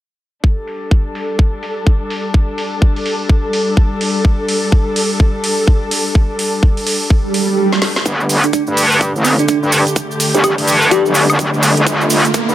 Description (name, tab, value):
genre	bass house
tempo	126 BPM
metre	4/4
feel	swing 61% on 16ths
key	unclear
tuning	A4 = 440 Hz
part	warm chamber string section	sustained chords	0.4-12.5 s	D3 to A4	-19 LUFS	left 1 dB	sidechain pumping, low-pass filter
part	electronic kick drum	drums	0.4-12.5 s	none	-12 LUFS	equal	high-pass filter on kick
part	garage drum kit	drums	0.7-12.5 s	hi-hat, snare drum, woodblock	-20 LUFS	right 1 dB	overdrive, high-pass filter on hats, low-pass filter on hats, high-pass filter on snare, low-pass filter on snare, high-pass filter on perc, low-pass filter on perc
part	swell and riser	sound effects	7.2-12.5 s	none	-20 LUFS	right 4 dB	none
part	metallic wobble bass	bass	8.1-12.5 s	G1 to G2	-13 LUFS	equal	distortion, chorus, overdrive, sidechain pumping, high-pass filter
part	cabasa	percussion	8.1-12.5 s	none	-23 LUFS	right 4 dB	none
part	bell-like FM electric piano	melody	8.4-11.3 s	C4 to G4	-18 LUFS	right 1 dB	chorus, phaser, dub echo
room	light reverb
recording	none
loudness	-12 LUFS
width	side -13 dB against mid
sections	0.4-8.1 A section; 8.1-12.5 B section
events	swell 7.2-8.1; kick drops out 7.6-8.1; drum fill 7.7-8.1, 11.9-12.5; build-up 8.1-12.5; riser 8.1-12.5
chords	0.4 Gsus2